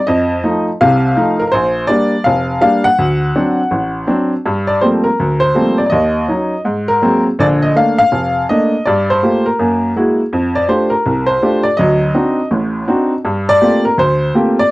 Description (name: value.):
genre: solo jazz.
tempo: 164 BPM.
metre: 4/4.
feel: swing 63% on 8ths.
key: G minor.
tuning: A4 = 441 Hz.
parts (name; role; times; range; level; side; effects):
clear upright piano; solo; 0.0-14.7 s; F1 to F#5; -11 LUFS; equal; none.
room: moderate booth ambience, RT60 0.2 s.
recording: dry, close 1970s-style studio recording.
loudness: -11 LUFS.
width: side -19 dB against mid.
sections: 0.0-4.4 A section; 4.4-14.7 B section.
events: none.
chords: 0.1 F7; 1.5 Bb6; 3.0 D7; 4.4 Gm11; 5.9 Ebm7; 6.6 Ab9; 7.4 Bbmaj7; 8.8 Gm9; 9.6 F#9; 10.3 F69; 11.8 D7b9; 13.2 Gm11.